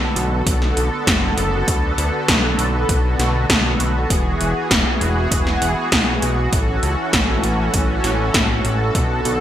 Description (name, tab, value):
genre	synthwave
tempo	99 BPM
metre	4/4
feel	straight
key	unclear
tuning	A4 = 440 Hz
part	soft supersaw	sustained chords	0.0-9.4 s	D3 to A4	-21 LUFS	equal	ensemble chorus, sidechain pumping
part	fat analog bass	bass	0.2-9.4 s	E1 to D2	-22 LUFS	equal	tube saturation, sidechain pumping
part	80s electronic pad drums	drums	0.2-9.4 s	hi-hat, snare drum	-20 LUFS	equal	gated reverb
part	electronic kick drum	drums	0.5-9.1 s	none	-22 LUFS	equal	none
room	moderate plate reverb, RT60 1.4 s, digital ambience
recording	bright 1980s-style digital production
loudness	-16 LUFS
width	side -11 dB against mid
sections	0.0-9.4 A section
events	none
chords	0.0 Bm7; 4.1 Eadd9; 6.5 A6